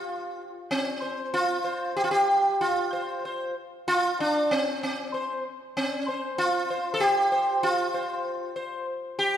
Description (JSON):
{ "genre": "indian classical", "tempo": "95 BPM", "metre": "4/4", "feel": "straight", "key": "unclear", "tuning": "A4 = 441 Hz", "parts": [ { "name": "sitar", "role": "solo", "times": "0.0-9.4 s", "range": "C4 to C5", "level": "-24 LUFS", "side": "equal", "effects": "none" } ], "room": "moderate scoring stage reverb, RT60 2.0 s", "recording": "recorded in a church or concert hall", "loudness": "-24 LUFS", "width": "side -10 dB against mid", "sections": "0.0-9.4 A section", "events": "speeding up 0.0-9.4", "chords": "none" }